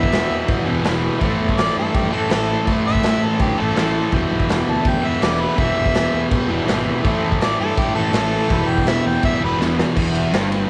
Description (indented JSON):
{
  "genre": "garage rock duo or trio",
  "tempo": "165 BPM",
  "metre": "4/4",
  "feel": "straight",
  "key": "E minor",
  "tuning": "A4 = 440 Hz",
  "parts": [
    { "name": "warm harmonica", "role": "melody", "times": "0.0-9.6 s", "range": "G4 to A5", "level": "-25 LUFS", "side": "equal", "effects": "overdrive" },
    { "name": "combo organ", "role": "sustained chords", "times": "0.0-9.9 s", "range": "E4 to D5", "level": "-32 LUFS", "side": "equal", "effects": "none" },
    { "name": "thick fuzz guitar", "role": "riff", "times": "0.0-10.7 s", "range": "E2 to A3", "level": "-22 LUFS", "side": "equal", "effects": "distortion" },
    { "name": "fuzz fingered electric bass", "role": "bass", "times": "0.0-10.7 s", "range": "E1 to A2", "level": "-29 LUFS", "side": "equal", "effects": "overdrive" },
    { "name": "raw garage drum kit", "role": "drums", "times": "0.0-10.6 s", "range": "crash cymbal, kick drum, ride cymbal, snare drum", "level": "-24 LUFS", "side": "equal", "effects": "vintage 12-bit sampler grit" }
  ],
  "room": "light reverb, small room ambience",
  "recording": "none",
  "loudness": "-19 LUFS",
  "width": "mono",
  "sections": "0.0-10.0 A section",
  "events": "drum fill 9.6-10.0",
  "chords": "0.0 Em; 1.2 Am; 4.1 Em; 7.0 Am; 8.5 Em"
}